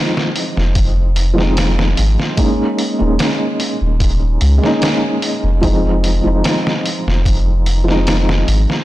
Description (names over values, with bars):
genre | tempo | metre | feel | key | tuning
trip hop | 74 BPM | 4/4 | straight | F minor | A4 = 440 Hz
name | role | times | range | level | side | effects
felt-muted upright piano | accompaniment | 0.0-8.8 s | F3 to Eb4 | -18 LUFS | equal | tremolo, tape echo
trip hop sampler-style drum kit | drums | 0.2-8.8 s | hi-hat, kick drum, snare drum | -19 LUFS | equal | studio reverb
soft dub sub bass | bass | 0.6-8.7 s | Eb1 to Db2 | -14 LUFS | equal | tube saturation
room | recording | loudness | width
light reverb | blown-out, overdriven recording, overdrive | -13 LUFS | side -16 dB against mid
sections
0.0-8.8 A section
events
none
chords
0.0 Fm7; 2.4 Eb7sus4; 5.6 Fm7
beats
0.76 1.57 | 2.38 3.20 4.01 4.82 | 5.63 6.44 7.25 8.06